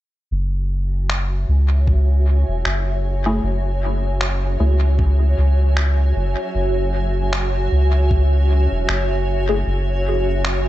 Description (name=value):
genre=ambient dub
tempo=77 BPM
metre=4/4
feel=swing 56% on 16ths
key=F# minor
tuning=A4 = 440 Hz
part: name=granular cloud pad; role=sustained chords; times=1.0-10.7 s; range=F#4 to G#5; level=-24 LUFS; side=right 1 dB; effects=built-in reverb
part: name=soft dub sub bass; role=bass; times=0.3-10.7 s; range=E1 to C#2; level=-17 LUFS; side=equal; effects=tube saturation
part: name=electronic finger snaps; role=drums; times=1.1-10.6 s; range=none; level=-26 LUFS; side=equal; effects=dub echo
part: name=electronic kick drum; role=drums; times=1.9-8.3 s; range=none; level=-20 LUFS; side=equal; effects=none
part: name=filtered dub chord stab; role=stabs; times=3.3-4.8, 9.5-10.7 s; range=A3 to G#4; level=-26 LUFS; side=left 2 dB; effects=phaser, cassette tape, dub echo
room=little or no reverb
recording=echo-heavy mix, nothing above 8.0 kHz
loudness=-16 LUFS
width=side -14 dB against mid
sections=0.3-10.7 A section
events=none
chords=0.3 F#m9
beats=| 0.32 1.10 1.88 2.65 | 3.43 4.21 4.99 5.77 | 6.55 7.33 8.11 8.89 | 9.67 10.45